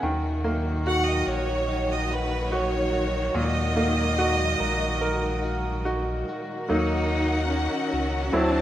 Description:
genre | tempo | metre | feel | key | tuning
pop ballad | 72 BPM | 4/4 | straight | unclear | A4 = 440 Hz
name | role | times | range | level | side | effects
bright concert grand piano | accompaniment | 0.0-8.6 s | A#2 to A#4 | -27 LUFS | right 1 dB | none
warm symphonic string section | sustained chords | 0.0-8.6 s | A#2 to A5 | -31 LUFS | left 2 dB | none
direct-recorded clean electric guitar | arpeggios | 0.0-8.6 s | D3 to A#4 | -34 LUFS | left 2 dB | digital delay
sub bass with octave | bass | 0.0-8.6 s | A#1 to D#2 | -29 LUFS | equal | none
clear studio violin section | melody | 0.9-5.9 s | B4 to F#5 | -28 LUFS | right 2 dB | none
warm studio cello section | second line | 6.7-8.6 s | C#4 to D#4 | -29 LUFS | left 1 dB | none
room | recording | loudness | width
light reverb, small room ambience | rough home demo mix | -23 LUFS | side -12 dB against mid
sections
0.0-6.7 A section; 6.7-8.6 B section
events
grand piano solo 6.7-8.6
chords
0.0 D#m

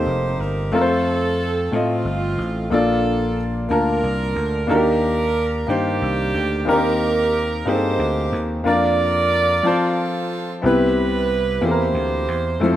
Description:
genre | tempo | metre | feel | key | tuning
slow gospel | 61 BPM (dotted quarters) | 6/8 | straight | Bb major | A4 = 440 Hz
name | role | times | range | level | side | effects
bright saxophone section | melody | 0.0-12.8 s | A3 to D5 | -22 LUFS | right 3 dB | tape echo
warm upright piano | accompaniment | 0.0-12.8 s | Bb2 to A5 | -20 LUFS | left 2 dB | none
vintage slap bass | bass | 0.0-12.8 s | F1 to A2 | -24 LUFS | equal | none
room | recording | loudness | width
light reverb | rough home demo mix | -17 LUFS | side -12 dB against mid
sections
0.0-10.6 A section; 10.6-12.8 A section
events
break 9.6-10.6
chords
0.0 Cm7; 0.7 F; 2.7 Bbmaj7; 4.7 Ebmaj7; 6.7 Cm7/Eb; 8.6 Bb/F; 9.6 F; 10.6 Cmaj7; 11.6 C7

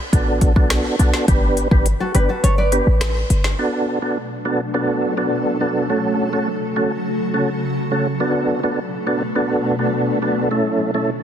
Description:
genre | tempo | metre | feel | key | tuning
dancehall | 104 BPM | 4/4 | straight | B minor | A4 = 439 Hz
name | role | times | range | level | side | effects
percussive tonewheel organ | accompaniment | 0.1-11.1 s | A3 to B4 | -20 LUFS | right 1 dB | chorus vibrato, fast rotary speaker
short 808-style bass | bass | 0.1-3.5 s | G1 to B1 | -18 LUFS | equal | none
afro-pop drum kit | drums | 0.1-3.6 s | finger snaps, hi-hat, kick drum, rim click, snare drum | -19 LUFS | equal | soft clipping on snare
nylon-string guitar | arpeggios | 2.0-3.4 s | F#4 to D5 | -22 LUFS | equal | none
granular cloud pad | sustained chords | 4.1-11.2 s | B2 to A4 | -23 LUFS | left 1 dB | built-in reverb, sidechain pumping
room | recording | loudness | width
light reverb | dense, heavily limited modern master | -16 LUFS | side -9 dB against mid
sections
0.0-3.6 A section; 3.6-11.2 B section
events
kick muted 2.4-3.6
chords
0.0 Bm7; 1.3 G; 3.6 Bm7; 5.9 F#m; 8.2 Bm7; 10.5 A

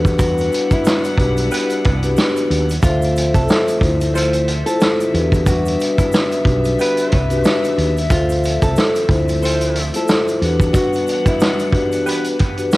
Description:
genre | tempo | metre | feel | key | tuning
hip hop, boom-bap hip-hop | 91 BPM | 4/4 | swing 57% on 16ths | unclear | A4 = 440 Hz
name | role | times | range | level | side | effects
vibraphone with soft mallets | accompaniment | 0.0-12.8 s | G3 to E5 | -19 LUFS | left 2 dB | high-pass filter, low-pass filter
rich chamber string section | sustained chords | 0.0-12.8 s | D3 to F#5 | -27 LUFS | left 1 dB | high-pass filter, low-pass filter
woody fretless electric bass | bass | 0.0-10.7 s | B1 to E2 | -19 LUFS | equal | none
vintage drum kit | drums | 0.0-12.8 s | hi-hat, kick drum, snare drum | -18 LUFS | equal | cassette tape
egg shaker | percussion | 0.1-12.8 s | none | -38 LUFS | right 5 dB | none
nylon-string guitar | melody | 0.2-11.6 s | E4 to C5 | -23 LUFS | equal | high-pass filter, low-pass filter, cassette tape
bright saxophone section | stabs | 1.5-12.3 s | B3 to C5 | -26 LUFS | right 1 dB | high-pass filter, low-pass filter, tape echo
room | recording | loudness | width
light reverb | home recording on cassette | -14 LUFS | side -19 dB against mid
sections
0.0-12.8 A section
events
none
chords
0.0 Em9; 2.8 Dm9; 5.1 Em9; 8.1 Dm9; 10.4 Em9

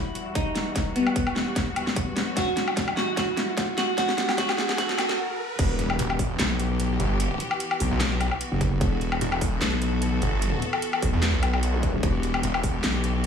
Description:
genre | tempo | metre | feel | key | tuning
heavy wobble dubstep | 149 BPM | 4/4 | swing 54% on 16ths, half-time | E minor | A4 = 438 Hz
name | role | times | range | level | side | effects
semi-hollow electric guitar | melody | 0.0-5.2 s | B3 to F#4 | -27 LUFS | right 1 dB | wide subtle chorus, dub echo
bright studio string section | sustained chords | 0.0-13.3 s | E2 to A4 | -33 LUFS | left 1 dB | sidechain pumping, low-pass filter
riser, impact and zap | sound effects | 1.7-7.2, 11.7-11.8 s | none | -34 LUFS | equal | none
dubstep drum kit | drums | 0.2-13.3 s | crash cymbal, handclaps, hi-hat, snare drum, woodblock | -28 LUFS | left 1 dB | none
electronic kick drum | drums | 0.4-12.7 s | none | -29 LUFS | equal | overdrive
wobble bass | bass | 5.6-13.3 s | E1 to B1 | -25 LUFS | equal | chorus, overdrive
snarling distorted saw bass | bass | 6.0-12.8 s | E1 to E2 | -25 LUFS | equal | distortion, overdrive
room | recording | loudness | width
moderate digital room reverb, RT60 1.2 s | high-pass filter, studio reverb | -22 LUFS | side -7 dB against mid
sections
0.0-5.6 A section; 5.6-13.3 B section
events
build-up 0.0-5.6; drum fill 0.0-5.2; filter sweep 0.0-5.6; riser 1.7-5.6; stop 5.2-5.6; drop 5.6-13.3; impact 5.6-7.2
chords
0.0 Emadd9

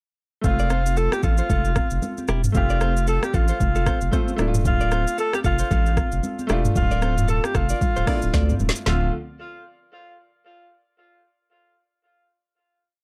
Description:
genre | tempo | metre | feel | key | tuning
afrobeats | 114 BPM | 4/4 | swing 58% on 16ths | D minor | A4 = 440 Hz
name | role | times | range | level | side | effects
clear grand piano | accompaniment | 0.4-9.1 s | D3 to G4 | -33 LUFS | equal | none
saturated sub bass | bass | 0.4-9.1 s | D1 to D2 | -25 LUFS | equal | none
afro-pop drum kit | drums | 0.4-9.0 s | hi-hat, kick drum, rim click, shaker, snare drum, toms | -26 LUFS | equal | none
congas | percussion | 0.4-9.1 s | none | -35 LUFS | equal | none
breathy alto saxophone | melody | 0.5-9.1 s | F4 to A4 | -29 LUFS | equal | tape echo
direct-recorded clean electric guitar | riff | 0.6-9.1 s | E4 to D5 | -34 LUFS | equal | tape echo
room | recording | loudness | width
little or no reverb | dark, warm production | -22 LUFS | mono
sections
0.4-8.9 chorus; 8.9-11.0 final chord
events
drum fill 8.3-8.9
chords
0.4 F; 4.4 Dm

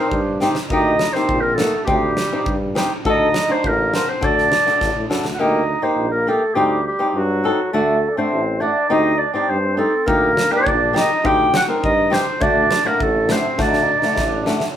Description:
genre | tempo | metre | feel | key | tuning
klezmer | 102 BPM | 2/4 | straight | D phrygian dominant | A4 = 440 Hz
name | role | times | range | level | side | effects
mellow clarinet | melody | 0.0-14.4 s | F#4 to G5 | -19 LUFS | equal | none
bright trombone | second line | 0.0-14.8 s | F#3 to G4 | -25 LUFS | right 2 dB | none
flamenco guitar | accompaniment | 0.0-14.6 s | A3 to C5 | -20 LUFS | left 1 dB | none
warm tuba | bass | 0.1-14.5 s | A1 to A2 | -24 LUFS | equal | none
huge arena drum kit | drums | 0.1-5.4, 10.1-14.7 s | kick drum, snare drum | -24 LUFS | equal | none
room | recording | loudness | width
moderate studio ambience, RT60 0.5 s | band playing live in one room | -15 LUFS | side -10 dB against mid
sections
0.0-5.4 A section; 5.4-14.8 A section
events
drum fill 0.4, 4.8-5.4, 13.6-14.8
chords
0.0 Cm; 0.7 Eb/D; 1.9 Cm/D; 3.1 D; 5.4 Eb/D; 6.6 Cm/D; 7.7 D; 8.9 Cm/D; 10.1 Eb/D; 11.2 Cm/D; 12.4 D

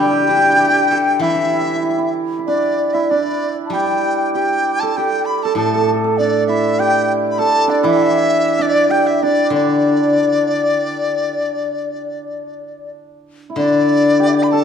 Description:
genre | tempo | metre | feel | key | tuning
chinese traditional, Chinese chamber ensemble | 97 BPM | 4/4 | rubato | unclear | A4 = 440 Hz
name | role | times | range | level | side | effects
mellow dizi | melody | 0.0-14.6 s | D5 to B5 | -19 LUFS | equal | none
hammered dulcimer | second line | 0.0-14.6 s | D4 to A4 | -18 LUFS | right 4 dB | none
low xiao | second line | 0.0-14.6 s | D5 to B5 | -22 LUFS | left 6 dB | none
steel-string zither | accompaniment | 0.0-14.6 s | A2 to A4 | -20 LUFS | left 3 dB | none
room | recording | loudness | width
wet recital hall reverb, RT60 1.4 s | dark, warm production | -14 LUFS | side -7 dB against mid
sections
0.0-13.6 A section; 13.6-14.6 B section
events
none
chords
none

